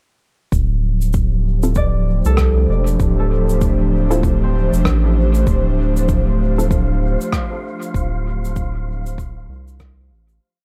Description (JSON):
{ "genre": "ambient dub", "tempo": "97 BPM", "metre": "4/4", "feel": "swing 60% on 16ths", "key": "D minor", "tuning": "A4 = 440 Hz", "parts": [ { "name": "airy breathy pad", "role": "sustained chords", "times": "0.5-10.4 s", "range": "F3 to C5", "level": "-25 LUFS", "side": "equal", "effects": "chorus" }, { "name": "round analog bass", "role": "bass", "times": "0.5-10.4 s", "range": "D1 to C2", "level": "-20 LUFS", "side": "equal", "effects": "none" }, { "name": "electronic kick drum", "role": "drums", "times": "0.5-9.9 s", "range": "none", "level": "-23 LUFS", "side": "equal", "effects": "none" }, { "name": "shaker and rim click", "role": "drums", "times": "0.5-10.4 s", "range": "none", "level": "-31 LUFS", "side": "equal", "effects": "dub echo" }, { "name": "filtered dub chord stab", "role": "stabs", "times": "1.6-6.8 s", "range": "C4 to A4", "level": "-30 LUFS", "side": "equal", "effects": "chorus, dub echo" }, { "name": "concert harp", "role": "arpeggios", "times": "1.8-7.4 s", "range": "A3 to D5", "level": "-29 LUFS", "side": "equal", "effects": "low-pass filter, dub echo" }, { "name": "wind-like tuned noise texture", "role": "texture", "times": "6.2-10.4 s", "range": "F4 to F5", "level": "-37 LUFS", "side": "equal", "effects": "built-in reverb" } ], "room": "light reverb, small room ambience", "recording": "none", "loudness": "-18 LUFS", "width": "mono", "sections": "0.5-10.4 groove", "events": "filter sweep on synth stab 0.5-10.4; fade-out 7.1-10.4", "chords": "0.5 Dm7", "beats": "| 0.52 1.14 1.76 2.38 | 3.00 3.62 4.23 4.85 | 5.47 6.09 6.71 7.33 | 7.95 8.56 9.18 9.80" }